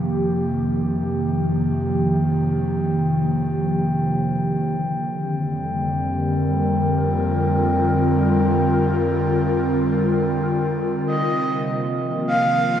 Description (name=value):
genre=ambient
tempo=free time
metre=none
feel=none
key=unclear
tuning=A4 = 442 Hz
part: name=airy breathy pad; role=sustained chords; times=0.0-12.8 s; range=C3 to Bb4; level=-20 LUFS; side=equal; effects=chorus
part: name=worn celesta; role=arpeggios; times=0.0-1.0 s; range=none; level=barely audible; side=none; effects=none
part: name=deep rumbling drone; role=bass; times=0.0-12.8 s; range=F2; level=-29 LUFS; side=equal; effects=built-in reverb
part: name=glass harmonica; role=texture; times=0.0-11.1 s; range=G5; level=-29 LUFS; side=left 2 dB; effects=none
part: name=breathy flute-like synth lead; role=melody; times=11.1-12.8 s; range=Eb5 to F5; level=-21 LUFS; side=right 1 dB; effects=wide subtle chorus, vintage 12-bit sampler grit
part: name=organ-like drone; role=drone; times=12.2-12.8 s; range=none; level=barely audible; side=none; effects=none
room=wet cathedral reverb, RT60 6.5 s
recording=in a vast, echoing space, nothing above 11.0 kHz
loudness=-18 LUFS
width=side -9 dB against mid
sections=0.0-11.1 A section; 11.1-12.8 B section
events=fade-in on synth drone 0.0-11.1; fade-in on glass harmonica 0.0-11.1; filter sweep on analog synth pad 0.0-11.1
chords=0.0 F5; 4.7 Gm/F; 11.1 F7sus4